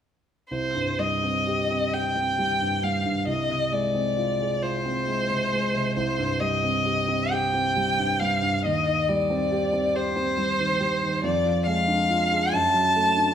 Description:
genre	classical, romantic duo for violin and grand piano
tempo	42-48 BPM (dotted quarters)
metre	6/8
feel	rubato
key	C minor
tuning	A4 = 440 Hz
part	warm violin	melody	0.5-13.3 s	C5 to A5	-24 LUFS	left 1 dB	none
part	dark baby grand piano	accompaniment	0.5-13.3 s	C2 to Ab4	-26 LUFS	right 1 dB	none
room	moderate recital hall reverb, RT60 1.5 s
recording	none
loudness	-22 LUFS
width	side -8 dB against mid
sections	0.5-13.3 A section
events	none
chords	0.5 Cm; 3.3 Fm/C; 6.0 Cm; 8.6 Cm/Eb; 11.2 Ddim/F; 12.5 D/F#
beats	| 0.51 1.93 | 3.27 4.62 | 5.96 7.31 | 8.64 9.94 | 11.23 12.52

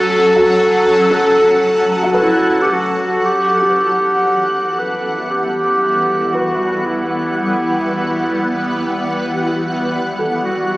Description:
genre	ambient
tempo	58 BPM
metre	4/4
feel	straight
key	E dorian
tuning	A4 = 439 Hz
part	warm clarinet	melody	0.0-10.8 s	E4 to B4	-16 LUFS	equal	shimmer reverb, dub echo
part	shimmering ambient pad	sustained chords	0.0-10.8 s	E3 to F#5	-18 LUFS	equal	chorus, built-in reverb, phaser, shimmer reverb
part	felt-muted upright piano	arpeggios	0.0-10.8 s	F#4 to B4	-22 LUFS	equal	shimmer reverb, dub echo
part	warm sub bass	bass	0.0-10.8 s	E2 to F#2	-50 LUFS	equal	none
part	twinkling granular texture	texture	4.7-10.8 s	F#5 to F#6	-36 LUFS	equal	none
room	wet spring reverb, RT60 2.7 s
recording	echo-heavy mix, small speaker sound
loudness	-13 LUFS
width	side -19 dB against mid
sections	0.0-3.2 A section; 3.2-10.8 B section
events	none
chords	0.0 F#m; 3.2 Em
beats	0.10 1.14 2.17 | 3.21 4.24 5.28 6.31 | 7.34 8.38 9.41 10.45

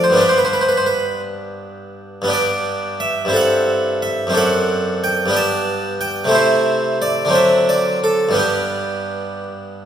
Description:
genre	classical, baroque-style suite movement for harpsichord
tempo	56-61 BPM (dotted quarters)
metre	6/8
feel	rubato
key	G major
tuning	A4 = 440 Hz
part	harpsichord	solo	0.0-9.9 s	F2 to A5	-15 LUFS	equal	none
room	wet scoring stage reverb, RT60 1.6 s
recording	recorded in a church or concert hall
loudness	-15 LUFS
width	side -9 dB against mid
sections	0.0-9.9 A section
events	none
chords	0.2 G; 3.3 Am7/G; 4.4 D7/F#; 5.3 G; 6.3 Am/C; 7.3 D7; 8.4 G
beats	| 0.21 1.26 | 2.32 3.35 | 4.36 5.35 | 6.34 7.34 | 8.37 9.42

